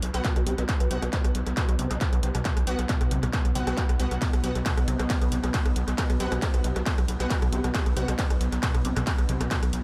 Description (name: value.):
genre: driving peak-time techno.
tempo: 136 BPM.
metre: 4/4.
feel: straight.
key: unclear.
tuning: A4 = 440 Hz.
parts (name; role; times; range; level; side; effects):
gritty driven synth bass; bass; 0.0-9.8 s; B1 to C2; -31 LUFS; equal; sidechain pumping.
swarming drone; drone; 0.0-9.8 s; B2 to B3; -38 LUFS; equal; built-in reverb, sidechain pumping.
techno drum kit; drums; 0.0-9.8 s; handclaps, hi-hat, ride cymbal, rim click; -35 LUFS; equal; overdrive, dub echo.
rave stab; stabs; 0.1-8.1 s; B3 to F#5; -39 LUFS; equal; chorus, built-in reverb, cassette tape, sidechain pumping, dub echo.
resonant blip pluck; riff; 0.2-9.6 s; B2 to B3; -36 LUFS; equal; phaser, sidechain pumping, dub echo.
electronic kick drum; drums; 0.2-9.6 s; none; -29 LUFS; equal; distortion, overdrive.
room: light reverb, digital ambience.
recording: echo-heavy mix.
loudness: -26 LUFS.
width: mono.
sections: 0.0-9.8 A section.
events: none.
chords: 0.0 B5.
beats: 0.25 | 0.69 1.13 1.57 2.01 | 2.45 2.89 3.33 3.77 | 4.22 4.66 5.10 5.54 | 5.98 6.42 6.86 7.30 | 7.75 8.19 8.63 9.07 | 9.51.